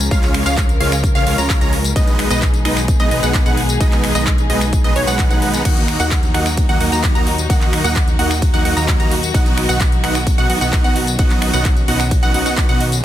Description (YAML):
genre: EDM, festival progressive house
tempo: 130 BPM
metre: 4/4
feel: straight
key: unclear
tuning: A4 = 440 Hz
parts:
  - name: warm studio string section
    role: sustained chords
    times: 0.0-13.0 s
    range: Bb2 to Bb4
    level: -24 LUFS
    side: left 1 dB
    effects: sidechain pumping
  - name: fat analog bass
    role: bass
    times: 0.0-13.0 s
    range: Cb2 to Eb2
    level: -21 LUFS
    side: equal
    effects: sidechain pumping
  - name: big-room dance drum kit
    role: drums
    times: 0.0-13.0 s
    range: crash cymbal, finger snaps, handclaps, hi-hat, ride cymbal, tambourine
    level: -23 LUFS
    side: left 1 dB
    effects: none
  - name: wide unison pluck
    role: arpeggios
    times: 0.1-12.8 s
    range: Db5 to Bb5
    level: -23 LUFS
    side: right 1 dB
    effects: cassette tape, sidechain pumping, digital delay
  - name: supersaw chords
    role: riff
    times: 0.1-12.8 s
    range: Ab3 to Bb5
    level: -21 LUFS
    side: right 1 dB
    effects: sidechain pumping, digital delay
  - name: electronic kick drum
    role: drums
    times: 0.1-12.7 s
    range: none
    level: -16 LUFS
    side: equal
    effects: none
room: digital ambience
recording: dense, heavily limited modern master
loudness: -13 LUFS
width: side -12 dB against mid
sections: 0.0-13.0 A section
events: none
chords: 0.0 Db; 2.0 Abm/Cb; 5.7 Ebm; 9.3 B